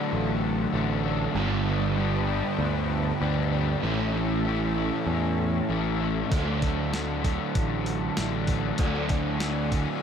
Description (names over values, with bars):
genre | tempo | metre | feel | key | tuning
rock, shoegaze and dream pop | 97 BPM | 4/4 | straight | unclear | A4 = 441 Hz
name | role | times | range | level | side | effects
lush unison pad | sustained chords | 0.0-10.0 s | C#4 to A5 | -35 LUFS | right 1 dB | chorus, phaser
crunchy overdriven guitar | riff | 0.0-10.0 s | G2 to E4 | -30 LUFS | right 9 dB | reverse reverb
raw garage guitar | riff | 0.0-10.0 s | G2 to E4 | -29 LUFS | left 12 dB | overdrive, wide subtle chorus
picked electric bass | bass | 0.1-9.9 s | G1 to E2 | -29 LUFS | equal | none
clean 12-bit digital drum machine | drums | 6.3-9.9 s | hi-hat, kick drum, snare drum | -28 LUFS | equal | none
room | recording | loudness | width
light reverb | none | -24 LUFS | side -7 dB against mid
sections
0.0-10.0 A section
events
none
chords
0.0 D; 1.3 Gadd9; 3.8 A; 6.3 D